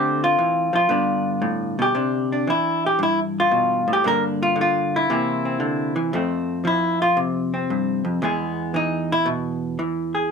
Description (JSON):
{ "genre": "solo jazz", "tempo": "115 BPM", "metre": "4/4", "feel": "swing 69% on 8ths", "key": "C major", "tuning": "A4 = 440 Hz", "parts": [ { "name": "vintage hollow-body jazz guitar", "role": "solo", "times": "0.0-10.3 s", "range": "E2 to Bb4", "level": "-19 LUFS", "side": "equal", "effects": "none" } ], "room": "light reverb", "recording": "minimal, uncompressed stereo recording", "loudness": "-19 LUFS", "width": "side -6 dB against mid", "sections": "0.0-6.1 A section; 6.1-10.3 B section", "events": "hollow-body jazz guitar solo 6.1-10.3", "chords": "0.0 Dm9; 0.9 G9; 1.9 Cmaj9; 4.0 Gm7; 5.1 C7; 6.1 F; 8.2 E", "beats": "0.38 0.91 1.43 | 1.95 2.47 3.00 3.52 | 4.04 4.56 5.08 5.61 | 6.13 6.65 7.17 7.70 | 8.22 8.74 9.26 9.78 | 10.30" }